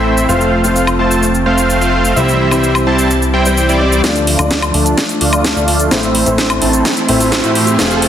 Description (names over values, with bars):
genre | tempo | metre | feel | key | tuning
EDM, festival progressive house | 128 BPM | 4/4 | straight | D minor | A4 = 440 Hz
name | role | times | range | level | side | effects
felt-muted upright piano | accompaniment | 0.0-8.1 s | G3 to D5 | -18 LUFS | left 2 dB | sidechain pumping, dub echo
lush unison pad | sustained chords | 0.0-8.1 s | E3 to D4 | -22 LUFS | right 1 dB | chorus, phaser, sidechain pumping
supersaw chords | riff | 0.0-8.1 s | G3 to A5 | -14 LUFS | right 1 dB | sidechain pumping, low-pass filter, dub echo
fat analog bass | bass | 0.0-8.1 s | F1 to A2 | -18 LUFS | equal | sidechain pumping
house drum kit | drums | 0.2-8.1 s | hi-hat, shaker, snare drum, woodblock | -17 LUFS | equal | overdrive
electronic kick drum | drums | 4.0-7.9 s | none | -23 LUFS | equal | none
riser | sound effects | 6.3-8.1 s | none | -22 LUFS | right 1 dB | none
room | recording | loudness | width
moderate digital room reverb, RT60 1.1 s | dense, heavily limited modern master | -10 LUFS | side -10 dB against mid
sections
0.0-4.0 A section; 4.0-8.1 B section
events
build-up 4.0-8.1; drum fill 4.0-8.1; filter sweep on supersaw synth 4.0-8.1; riser 6.3-8.1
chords
0.3 F; 2.2 C; 4.0 Dm; 5.9 Am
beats
| 0.29 0.76 1.23 1.70 | 2.16 2.63 3.10 3.57 | 4.04 4.51 4.98 5.45 | 5.91 6.38 6.85 7.32 | 7.79